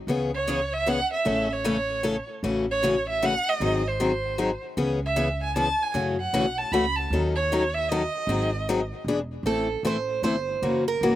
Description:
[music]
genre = acoustic string swing (jazz manouche)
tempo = 154 BPM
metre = 3/4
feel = swing 63% on 8ths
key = C# minor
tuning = A4 = 440 Hz
[part]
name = picked steel-string acoustic guitar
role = accompaniment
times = 0.1-11.1 s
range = C#3 to A4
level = -26 LUFS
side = left 3 dB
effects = slapback echo
[part]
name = upright bass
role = bass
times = 0.1-11.2 s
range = E1 to F#2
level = -31 LUFS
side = right 1 dB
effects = none
[part]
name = rich violin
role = melody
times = 0.3-9.1 s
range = B#4 to B5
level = -26 LUFS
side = right 2 dB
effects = none
[part]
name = picked steel-string acoustic guitar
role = second line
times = 9.5-11.2 s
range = A4 to C5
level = -26 LUFS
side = right 6 dB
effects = none
[sound]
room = little or no reverb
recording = recorded outdoors, with no room sound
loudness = -23 LUFS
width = side -13 dB against mid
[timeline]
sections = 0.1-9.5 A section; 9.5-11.2 B section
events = steel-string acoustic guitar solo 9.5-11.2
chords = 0.1 C#m7; 1.3 A; 2.4 F#m7/A; 3.6 G#7; 4.8 C#m7; 5.9 F#m7; 7.1 D#m7b5; 8.3 G#7; 9.1 E7; 9.5 Am; 10.6 F#7

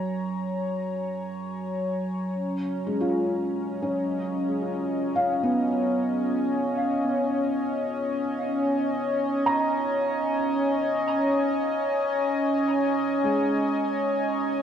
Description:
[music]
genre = ambient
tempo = free time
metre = none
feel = none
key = unclear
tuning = A4 = 441 Hz
[part]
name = warm analog pad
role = sustained chords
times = 0.0-14.6 s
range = Gb3 to Bb5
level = -25 LUFS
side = equal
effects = chorus
[part]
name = felt-muted upright piano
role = arpeggios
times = 2.9-14.6 s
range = Ab3 to Bb5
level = -28 LUFS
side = equal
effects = dub echo
[sound]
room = wet echo chamber reverb, RT60 2.1 s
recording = echo-heavy mix, cassette tape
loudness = -23 LUFS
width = side -8 dB against mid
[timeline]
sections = 0.0-14.6 A section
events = none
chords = 0.0 Gbadd9

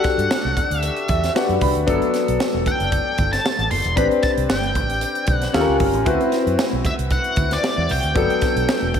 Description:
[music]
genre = polished 1980s jazz-funk pop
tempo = 115 BPM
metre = 4/4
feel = swing 54% on 16ths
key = G major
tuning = A4 = 440 Hz
[part]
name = octave-fuzz lead guitar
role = melody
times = 0.0-9.0 s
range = D5 to C6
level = -24 LUFS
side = left 1 dB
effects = distortion, slapback echo
[part]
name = bright grand piano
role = accompaniment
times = 0.0-9.0 s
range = F#3 to B5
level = -21 LUFS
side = left 3 dB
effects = analog chorus, slapback echo
[part]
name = crisp fusion drum kit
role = drums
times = 0.0-9.0 s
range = hi-hat, kick drum, snare drum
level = -23 LUFS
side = right 1 dB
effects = none
[part]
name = congas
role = percussion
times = 0.0-9.0 s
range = none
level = -34 LUFS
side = right 3 dB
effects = none
[part]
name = vintage muted fingered electric bass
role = bass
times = 0.2-8.9 s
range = E1 to G2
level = -24 LUFS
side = right 1 dB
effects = none
[sound]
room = moderate lush hall reverb, RT60 1.7 s, small room ambience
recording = big arena sound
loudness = -17 LUFS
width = side -8 dB against mid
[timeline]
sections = 0.0-9.0 A section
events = grand piano fill 0.8-1.9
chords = 0.0 Em11; 1.9 Gmaj7; 4.0 Am11; 5.5 Eb9; 6.1 D13; 8.2 Gmaj9

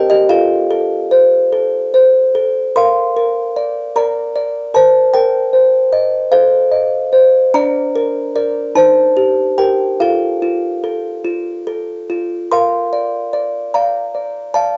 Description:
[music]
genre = classical, lullaby for music box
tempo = 49 BPM (dotted quarters)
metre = 6/8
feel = rubato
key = Bb major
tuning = A4 = 438 Hz
[part]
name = music box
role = solo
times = 0.0-14.8 s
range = C4 to C6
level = -14 LUFS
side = equal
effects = cassette tape
[sound]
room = moderate small room reverb, RT60 0.6 s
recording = home recording on cassette, nothing above 7.9 kHz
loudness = -14 LUFS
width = mono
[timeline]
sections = 0.0-12.5 A section; 12.5-14.8 B section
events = none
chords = 0.3 F; 2.8 Bb; 5.1 F7/Bb; 7.5 Bb/D; 8.8 Eb; 10.0 F; 12.5 Bb

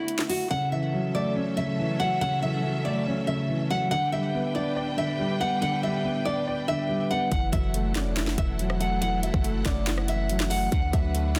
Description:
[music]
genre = hip hop, trap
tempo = 141 BPM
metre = 4/4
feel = half-time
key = F# phrygian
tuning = A4 = 440 Hz
[part]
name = nylon-string guitar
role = melody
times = 0.0-11.4 s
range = E4 to F#5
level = -32 LUFS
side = equal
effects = digital delay
[part]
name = warm symphonic string section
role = sustained chords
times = 0.0-11.4 s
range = D3 to G5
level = -37 LUFS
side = equal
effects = none
[part]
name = trap drum kit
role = drums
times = 0.1-0.4, 7.3-11.4 s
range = handclaps, hi-hat, kick drum, rim click, snare drum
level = -30 LUFS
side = equal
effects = none
[part]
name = dark grand piano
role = accompaniment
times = 0.5-11.4 s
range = C#3 to D5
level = -31 LUFS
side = equal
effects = none
[part]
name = hard-hitting 808-style bass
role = bass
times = 7.3-11.4 s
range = E1 to D2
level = -30 LUFS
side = equal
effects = none
[sound]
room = studio reverb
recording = dense, heavily limited modern master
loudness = -26 LUFS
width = mono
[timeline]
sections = 0.5-11.4 A section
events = break 0.0-0.5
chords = 0.0 D6; 0.5 F#m7; 3.9 G; 7.3 F#m7; 10.7 D6

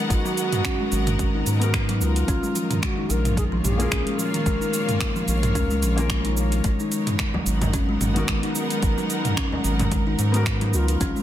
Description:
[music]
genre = organic downtempo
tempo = 110 BPM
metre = 4/4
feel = swing 56% on 16ths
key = G# dorian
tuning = A4 = 440 Hz
[part]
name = felt-muted upright piano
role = accompaniment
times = 0.0-11.0 s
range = A#3 to A#4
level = -33 LUFS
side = left 3 dB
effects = sidechain pumping, tape echo, shimmer reverb
[part]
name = rich symphonic string section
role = sustained chords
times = 0.0-11.2 s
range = A#2 to F#5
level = -30 LUFS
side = equal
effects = sidechain pumping, shimmer reverb
[part]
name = bass bansuri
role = melody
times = 0.1-6.3, 10.7-11.2 s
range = E#4 to A#4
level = -30 LUFS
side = equal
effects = ping-pong delay, shimmer reverb
[part]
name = round analog bass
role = bass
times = 0.1-11.1 s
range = G#1 to G#2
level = -24 LUFS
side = equal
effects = tube saturation, sidechain pumping
[part]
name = deep house drum kit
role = drums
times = 0.1-11.2 s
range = cabasa, finger snaps, hi-hat, toms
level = -28 LUFS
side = right 1 dB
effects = overdrive, soft clipping on snare
[part]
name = electronic kick drum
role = drums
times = 0.1-11.1 s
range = none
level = -27 LUFS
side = equal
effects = overdrive
[part]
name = kalimba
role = arpeggios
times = 0.3-11.2 s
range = D#3 to D#4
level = -26 LUFS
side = equal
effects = tape echo, shimmer reverb
[part]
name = frame drum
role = percussion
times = 7.3-9.9 s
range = none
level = -32 LUFS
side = left 1 dB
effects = none
[sound]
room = light reverb, studio ambience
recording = dense, heavily limited modern master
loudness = -20 LUFS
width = side -12 dB against mid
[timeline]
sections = 0.0-11.2 A section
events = none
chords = 0.0 G#m7; 2.3 A#m; 6.6 G#m7

